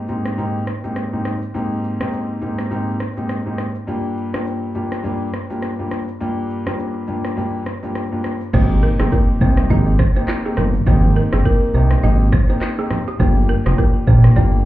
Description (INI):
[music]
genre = afrobeats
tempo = 103 BPM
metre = 4/4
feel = swing 58% on 16ths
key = unclear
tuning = A4 = 439 Hz
[part]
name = warm grand piano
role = accompaniment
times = 0.0-14.6 s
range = G2 to G4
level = -22 LUFS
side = left 1 dB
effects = none
[part]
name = deep house drum kit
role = drums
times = 0.1-14.5 s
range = crash cymbal, handclaps, kick drum, rim click, shaker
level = -20 LUFS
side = equal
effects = none
[part]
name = balafon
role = riff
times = 8.5-14.4 s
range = G4 to Eb5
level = -27 LUFS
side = right 4 dB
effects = ping-pong delay
[part]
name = fat analog bass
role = bass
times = 8.5-14.7 s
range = F1 to C2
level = -14 LUFS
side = equal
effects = none
[part]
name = congas and bongos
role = percussion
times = 8.5-14.5 s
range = none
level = -25 LUFS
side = right 5 dB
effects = none
[part]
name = impact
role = sound effects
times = 8.7-10.9 s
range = none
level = -26 LUFS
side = equal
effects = none
[sound]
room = light reverb, small room ambience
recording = heard muffled through a wall, club reverb, EQ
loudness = -16 LUFS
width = side -15 dB against mid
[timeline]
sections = 0.0-8.5 A section; 8.5-14.7 B section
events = impact 8.5-10.9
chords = 0.0 Abmaj7; 3.9 Gm7; 8.5 Abmaj7; 13.2 Bb6